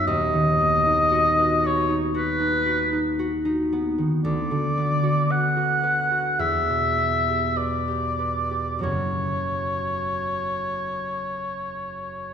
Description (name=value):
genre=classical, romantic duo for oboe and harp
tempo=45-60 BPM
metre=4/4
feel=rubato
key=B major, B minor from 4.2 s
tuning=A4 = 440 Hz
part: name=warm oboe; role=melody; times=0.0-12.3 s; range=B4 to F#5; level=-23 LUFS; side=left 1 dB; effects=none
part: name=concert harp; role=accompaniment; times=0.0-12.3 s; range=D#1 to B4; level=-25 LUFS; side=right 1 dB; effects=none
room=wet scoring stage reverb, RT60 1.9 s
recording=none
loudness=-21 LUFS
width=side -8 dB against mid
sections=0.0-12.3 A section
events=none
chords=0.1 B/D#; 4.2 Bm/D; 6.4 Em; 8.9 F#